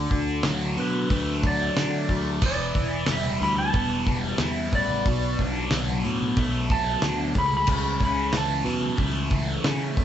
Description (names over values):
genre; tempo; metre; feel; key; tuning
psychedelic rock; 91 BPM; 4/4; straight; E dorian; A4 = 439 Hz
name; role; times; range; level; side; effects
thick fuzz guitar; riff; 0.0-10.0 s; B2 to E4; -27 LUFS; left 1 dB; distortion, phaser
picked electric bass; bass; 0.0-10.0 s; E1 to D3; -29 LUFS; equal; none
damped 70s drum kit; drums; 0.1-10.0 s; crash cymbal, hi-hat, kick drum, snare drum; -27 LUFS; equal; none
clean lap steel guitar; melody; 0.8-10.0 s; B4 to B5; -28 LUFS; equal; slapback echo
congas; percussion; 2.8-10.0 s; none; -36 LUFS; right 2 dB; none
room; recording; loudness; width
moderate studio reverb, RT60 0.7 s; band playing live in one room, nothing above 8.0 kHz; -22 LUFS; side -10 dB against mid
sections
0.0-10.0 A section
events
electric slide guitar solo 0.0-10.0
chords
0.0 D; 2.4 Em; 5.1 Bm7; 7.4 A/C#